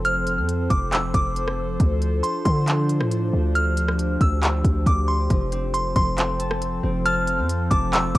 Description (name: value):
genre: hip hop, atmospheric cloud-rap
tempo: 137 BPM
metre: 4/4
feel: half-time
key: F major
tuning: A4 = 438 Hz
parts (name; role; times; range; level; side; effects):
- warbly tape-like pad; sustained chords; 0.0-8.2 s; F3 to C5; -28 LUFS; left 1 dB; chorus, built-in reverb, phaser, sidechain pumping, cassette tape
- warm 808-style bass; bass; 0.0-8.2 s; E1 to D3; -23 LUFS; equal; none
- smooth R&B drum kit; drums; 0.0-8.2 s; handclaps, hi-hat, kick drum, rim click; -23 LUFS; equal; overdrive, cassette tape
- delicate synth tine bell; melody; 0.1-8.2 s; C6 to F6; -25 LUFS; equal; chorus, cassette tape, tape echo
- concert harp; arpeggios; 5.3-8.2 s; F3 to A5; -29 LUFS; equal; cassette tape, tape echo
room: little or no reverb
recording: home recording on cassette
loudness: -19 LUFS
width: side -17 dB against mid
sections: 0.0-5.3 A section; 5.3-8.2 B section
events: none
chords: 0.0 F; 1.8 Dm7; 5.3 F